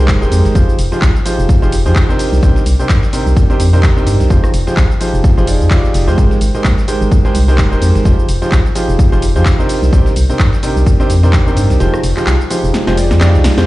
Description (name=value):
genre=piano house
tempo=128 BPM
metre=4/4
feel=swing 57% on 16ths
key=F dorian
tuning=A4 = 439 Hz
part: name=warm grand piano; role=riff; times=0.0-13.7 s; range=C3 to D5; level=-16 LUFS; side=right 1 dB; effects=sidechain pumping, digital delay
part: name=organ-like FM bass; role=bass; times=0.0-13.6 s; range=Eb1 to G2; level=-12 LUFS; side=equal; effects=sidechain pumping
part: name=dusty soul sampler-style drum kit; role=drums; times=0.1-13.7 s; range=hi-hat, snare drum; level=-32 LUFS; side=equal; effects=none
part: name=electronic kick drum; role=drums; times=0.1-11.4 s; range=none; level=-12 LUFS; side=equal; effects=none
part: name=house drum kit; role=drums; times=0.1-13.7 s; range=cabasa, handclaps, hi-hat, rim click, snare drum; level=-22 LUFS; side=equal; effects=none
room=little or no reverb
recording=played on a big sound system in a bare room, stone room reverb, nothing above 10.8 kHz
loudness=-9 LUFS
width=side -17 dB against mid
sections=0.0-13.7 A section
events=drop 0.0-13.7; kick drops out 11.8-13.7; drum fill 12.7-13.7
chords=0.0 Abmaj9; 0.6 Fm9; 2.2 Cm9; 4.3 Fm9; 6.2 Abmaj9; 8.1 Fm9; 9.7 Cm9; 11.8 Fm9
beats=0.08 | 0.55 1.02 1.49 1.96 | 2.43 2.90 3.37 3.83 | 4.30 4.77 5.24 5.71 | 6.18 6.65 7.12 7.58 | 8.05 8.52 8.99 9.46 | 9.93 10.40 10.87 11.33 | 11.80 12.27 12.74 13.21